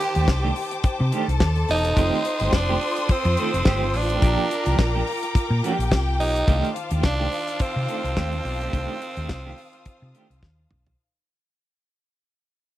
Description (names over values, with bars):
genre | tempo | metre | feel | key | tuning
disco | 106 BPM | 4/4 | swing 56% on 16ths | C dorian | A4 = 440 Hz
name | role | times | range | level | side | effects
raspy tenor saxophone | melody | 0.0-10.4 s | C4 to G4 | -26 LUFS | right 2 dB | none
clear studio string section | second line | 0.0-11.0 s | F4 to C6 | -30 LUFS | left 2 dB | none
clean electric guitar | accompaniment | 0.0-10.9 s | Eb3 to A4 | -29 LUFS | right 5 dB | tremolo
bright studio string section | sustained chords | 0.0-11.0 s | Eb3 to Eb6 | -32 LUFS | left 1 dB | none
damped 70s drum kit | drums | 0.0-11.0 s | hi-hat, kick drum, snare drum, toms | -22 LUFS | left 1 dB | none
hollow-body short-scale fingered electric bass | bass | 0.2-10.9 s | E1 to C3 | -24 LUFS | equal | none
room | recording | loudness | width
little or no reverb | dry, close 1970s-style studio recording | -20 LUFS | side -14 dB against mid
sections
0.0-6.5 A section; 6.5-11.0 B section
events
fade-out 6.5-11.0; drum fill 10.4-11.0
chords
0.0 Cm69; 2.0 F9; 4.2 Bb6; 6.5 Cm69